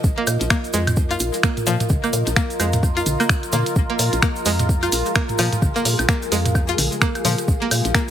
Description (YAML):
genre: minimal techno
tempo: 129 BPM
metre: 4/4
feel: swing 59% on 16ths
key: unclear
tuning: A4 = 440 Hz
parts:
  - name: woody FM bass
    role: bass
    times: 0.0-7.9 s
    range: Bb1 to Bb2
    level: -23 LUFS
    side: equal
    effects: sidechain pumping
  - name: electronic kick drum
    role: drums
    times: 0.0-8.1 s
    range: none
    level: -20 LUFS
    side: equal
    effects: small room ambience
  - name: egg shaker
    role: percussion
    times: 0.0-8.1 s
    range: none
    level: -31 LUFS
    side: right 4 dB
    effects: none
  - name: deep dark ambient pad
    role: texture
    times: 0.0-8.1 s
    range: F4 to F5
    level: -26 LUFS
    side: equal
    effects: chorus, built-in reverb, sidechain pumping
  - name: string-like resonator pluck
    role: riff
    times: 0.2-8.0 s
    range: F3 to F4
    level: -25 LUFS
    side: equal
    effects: chorus, sidechain pumping, ping-pong delay
  - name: minimal click drum kit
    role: drums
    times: 0.2-8.1 s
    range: finger snaps, hi-hat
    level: -23 LUFS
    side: equal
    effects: small room ambience
  - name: electronic claves and toms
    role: percussion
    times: 0.3-7.8 s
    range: none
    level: -26 LUFS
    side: equal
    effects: small room ambience, ping-pong delay
  - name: flickering grainy texture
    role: texture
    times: 4.4-8.1 s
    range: Ab3 to Ab4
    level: -33 LUFS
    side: left 2 dB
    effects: built-in reverb, sidechain pumping
room: light reverb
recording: heavily compressed radio sound, multiband compression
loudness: -17 LUFS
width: side -10 dB against mid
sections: 0.0-8.1 A section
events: none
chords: 0.0 Bbsus4